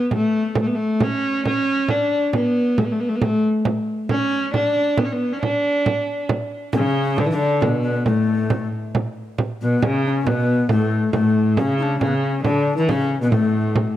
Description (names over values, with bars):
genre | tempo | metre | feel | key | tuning
medieval dance | 137 BPM | 3/4 | straight | unclear | A4 = 436 Hz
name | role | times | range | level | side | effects
dark viola da gamba | melody | 0.0-14.0 s | A2 to D4 | -19 LUFS | equal | tape echo
frame drum | percussion | 0.1-14.0 s | none | -23 LUFS | right 3 dB | none
breathy bass recorder | second line | 6.7-13.9 s | A3 to E4 | -23 LUFS | left 5 dB | none
room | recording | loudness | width
moderate spring reverb, RT60 1.2 s, studio reverb | dark, warm production | -18 LUFS | side -12 dB against mid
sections
0.0-6.7 A section; 6.7-14.0 A section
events
none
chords
none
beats
| 0.13 0.57 1.01 | 1.45 1.90 2.34 | 2.78 3.22 3.66 | 4.10 4.54 4.98 | 5.42 5.86 6.30 | 6.74 7.18 7.62 | 8.06 8.50 8.94 | 9.38 9.81 10.25 | 10.69 11.13 11.56 | 12.00 12.44 12.88 | 13.31 13.75